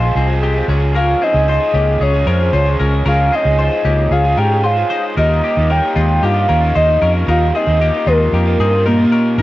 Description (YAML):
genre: indie pop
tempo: 114 BPM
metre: 4/4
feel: straight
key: unclear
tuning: A4 = 443 Hz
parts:
  - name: soft octave-layered synth lead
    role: melody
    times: 0.0-9.4 s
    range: Bb3 to G5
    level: -16 LUFS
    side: equal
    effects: chorus, phaser, cassette tape
  - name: raw garage guitar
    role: accompaniment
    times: 0.0-9.4 s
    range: Db3 to Ab4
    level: -24 LUFS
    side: right 5 dB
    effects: overdrive, cassette tape
  - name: warbly lo-fi synth keys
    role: accompaniment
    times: 0.0-9.4 s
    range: F4 to Eb5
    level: -25 LUFS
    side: left 5 dB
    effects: chorus, cassette tape
  - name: twelve-string electric guitar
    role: arpeggios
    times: 0.0-9.4 s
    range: Ab3 to C5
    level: -22 LUFS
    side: left 4 dB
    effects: cassette tape
  - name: vintage muted fingered electric bass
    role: bass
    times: 0.0-9.4 s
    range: Ab1 to Ab2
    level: -15 LUFS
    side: equal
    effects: none
room: light reverb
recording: home recording on cassette, vinyl crackle, nothing above 7.8 kHz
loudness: -12 LUFS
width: side -16 dB against mid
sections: 0.0-9.4 A section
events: none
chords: 0.0 Fm; 0.7 Db; 5.2 Ebadd9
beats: 0.43 | 0.96 1.48 2.01 2.54 | 3.06 3.59 4.12 4.64 | 5.17 5.70 6.22 6.75 | 7.28 7.80 8.33 8.86 | 9.38